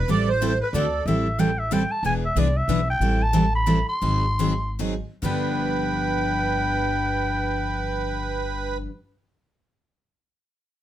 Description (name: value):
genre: acoustic string swing (jazz manouche)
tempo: 129-185 BPM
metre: 3/4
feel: swing 58% on 8ths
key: G mixolydian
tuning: A4 = 440 Hz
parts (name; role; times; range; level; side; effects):
- accordion; second line; 0.0-1.0, 5.2-8.8 s; A4 to D5; -28 LUFS; right 5 dB; light tremolo tuning
- upright bass; bass; 0.0-8.9 s; E1 to D2; -26 LUFS; equal; none
- picked steel-string acoustic guitar; accompaniment; 0.1-8.9 s; G2 to A4; -27 LUFS; left 5 dB; none
- picked steel-string acoustic guitar; accompaniment; 0.1-8.9 s; G2 to B4; -29 LUFS; right 7 dB; none
- growling clarinet; melody; 0.6-8.8 s; B4 to C6; -26 LUFS; equal; none
room: light reverb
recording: none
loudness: -21 LUFS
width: side -12 dB against mid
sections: 0.0-1.1 A section; 1.1-5.2 B section; 5.2-8.0 C section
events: slowing down 3.0-5.2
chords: 0.1 Am7; 0.7 D7; 1.1 Am7; 2.0 E7; 3.0 Am7; 4.0 Ab7; 5.2 G7